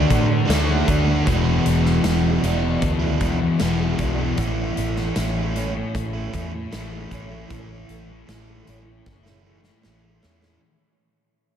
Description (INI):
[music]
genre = rock, shoegaze and dream pop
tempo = 77 BPM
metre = 4/4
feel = straight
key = unclear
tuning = A4 = 445 Hz
[part]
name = picked twelve-string acoustic guitar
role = arpeggios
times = 0.0-10.6 s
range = E3 to D4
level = -34 LUFS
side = right 5 dB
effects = ensemble chorus, analog delay
[part]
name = biting overdriven guitar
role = riff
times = 0.0-4.4 s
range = E2 to D4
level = -27 LUFS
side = right 1 dB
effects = none
[part]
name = overdriven semi-hollow guitar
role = riff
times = 0.0-10.6 s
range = E2 to F#4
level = -27 LUFS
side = right 6 dB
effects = reverse reverb
[part]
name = vintage muted fingered electric bass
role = bass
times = 0.0-10.6 s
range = E1 to A2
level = -24 LUFS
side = equal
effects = none
[part]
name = thick fuzz guitar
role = riff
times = 0.1-10.6 s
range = E2 to D4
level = -25 LUFS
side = left 6 dB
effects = distortion, lush chorus
[part]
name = huge arena drum kit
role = drums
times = 0.1-10.6 s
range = hi-hat, kick drum, snare drum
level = -27 LUFS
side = equal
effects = none
[sound]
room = wet cathedral reverb, RT60 5.4 s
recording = dreamy mix soaked in reverb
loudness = -19 LUFS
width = side -9 dB against mid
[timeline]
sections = 0.0-10.6 A section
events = fade-out 0.0-10.6; drum fill 9.1-10.6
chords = 0.0 D6; 1.3 E7; 4.4 A